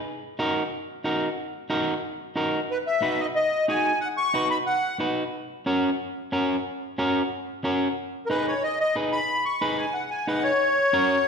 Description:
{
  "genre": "latin",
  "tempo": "182 BPM",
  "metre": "4/4",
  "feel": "straight",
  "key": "G# minor",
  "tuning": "A4 = 440 Hz",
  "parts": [
    { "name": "electric guitar at the edge of break-up", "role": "accompaniment", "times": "0.4-11.2 s", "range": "C#4 to B4", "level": "-26 LUFS", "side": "equal", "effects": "none" },
    { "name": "accordion", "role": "melody", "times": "2.7-5.0, 8.3-11.3 s", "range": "A#4 to C#6", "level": "-23 LUFS", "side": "left 1 dB", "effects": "light tremolo tuning" }
  ],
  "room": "wet recital hall reverb, RT60 1.5 s",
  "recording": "recorded in a church or concert hall",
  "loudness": "-23 LUFS",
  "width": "side -6 dB against mid",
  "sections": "0.0-8.0 A section; 8.0-11.3 B section",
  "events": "accordion solo 8.0-11.3",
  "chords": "0.1 D#m; 2.7 B; 5.3 F#; 8.0 G#m; 10.6 F#"
}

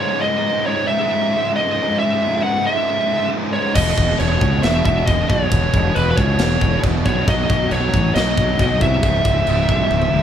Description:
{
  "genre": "heavy metal",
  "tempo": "136 BPM",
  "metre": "4/4",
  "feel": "straight",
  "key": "C# minor",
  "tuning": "A4 = 440 Hz",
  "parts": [
    { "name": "high-gain lead guitar", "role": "melody", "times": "0.0-10.2 s", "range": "B4 to F#5", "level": "-20 LUFS", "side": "right 1 dB", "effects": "distortion" },
    { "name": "distorted electric guitar", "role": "riff", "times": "0.0-10.2 s", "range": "C#2 to F#3", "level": "-22 LUFS", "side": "equal", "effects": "overdrive" },
    { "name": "fuzz fingered electric bass", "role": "bass", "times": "3.8-10.2 s", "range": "C#1 to C#2", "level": "-19 LUFS", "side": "equal", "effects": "overdrive" },
    { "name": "tight metal drum kit", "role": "drums", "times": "3.8-10.1 s", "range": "china cymbal, crash cymbal, kick drum, snare drum, toms", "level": "-20 LUFS", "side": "equal", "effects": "none" }
  ],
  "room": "light reverb",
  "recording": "band playing live in one room",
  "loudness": "-15 LUFS",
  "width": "side -9 dB against mid",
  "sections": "0.0-10.2 A section",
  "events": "drum fill 9.9-10.2",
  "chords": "0.0 C#m; 3.8 E5; 7.3 B; 9.0 C#m"
}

